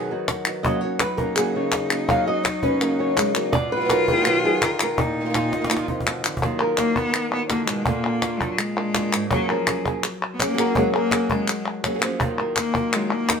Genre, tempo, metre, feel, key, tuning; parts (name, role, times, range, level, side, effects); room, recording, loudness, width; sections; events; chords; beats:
flamenco; 166 BPM; 4/4; straight; A4 = 440 Hz
flamenco guitar; melody; 0.0-13.4 s; F2 to F5; -24 LUFS; left 1 dB
flamenco guitar; stabs; 0.0-13.3 s; Gb2 to Ab4; -28 LUFS; right 6 dB
cajon; percussion; 0.1-13.4 s; -28 LUFS; equal
palmas hand claps; percussion; 0.3-13.4 s; -25 LUFS; left 2 dB
clear cello; second line; 0.7-13.4 s; F3 to F4; -26 LUFS; left 3 dB
light reverb; minimal, uncompressed stereo recording; -20 LUFS; side -6 dB against mid
0.0-6.4 A section; 6.4-13.4 B section
drum fill 5.5-6.4; cello solo 6.4-13.4
0.0 B; 0.6 Gb; 3.5 B; 5.0 Bbsus4; 6.4 Ebmadd9; 7.9 Bb; 9.3 Gbadd9; 12.2 Ebmadd9
0.29 | 0.65 1.01 1.37 1.73 | 2.09 2.45 2.81 3.18 | 3.54 3.90 4.26 4.62 | 4.98 5.34 5.70 6.07 | 6.43 6.79 7.15 7.51 | 7.87 8.23 8.60 8.96 | 9.32 9.68 10.04 10.40 | 10.76 11.12 11.49 11.85 | 12.21 12.57 12.93 13.29